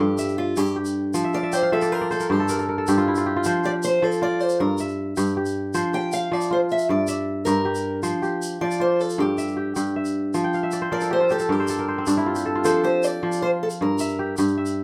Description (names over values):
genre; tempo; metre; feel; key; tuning
west african traditional, West African string and xylophone music; 104 BPM (dotted quarters); 12/8; straight; F major; A4 = 439 Hz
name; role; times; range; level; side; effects
picked old ladder-braced acoustic guitar; melody; 0.0-14.3 s; F4 to G5; -27 LUFS; equal; none
kora; arpeggios; 0.0-14.8 s; G2 to G5; -24 LUFS; equal; none
tube shaker; percussion; 0.2-14.8 s; none; -39 LUFS; equal; none
room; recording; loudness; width
light reverb; none; -23 LUFS; mono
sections
0.0-8.0 A section; 8.0-14.8 B section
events
steel-string acoustic guitar solo 0.0-8.0; kora fill 1.2-3.4, 10.4-12.7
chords
0.0 Em/G; 1.1 Fmaj13; 2.3 N.C.; 3.4 F5; 4.6 G5; 5.7 F5; 6.9 Gm; 8.0 F5; 9.2 Em/G; 10.3 Fmaj13; 11.5 N.C.; 12.7 F5; 13.8 Gm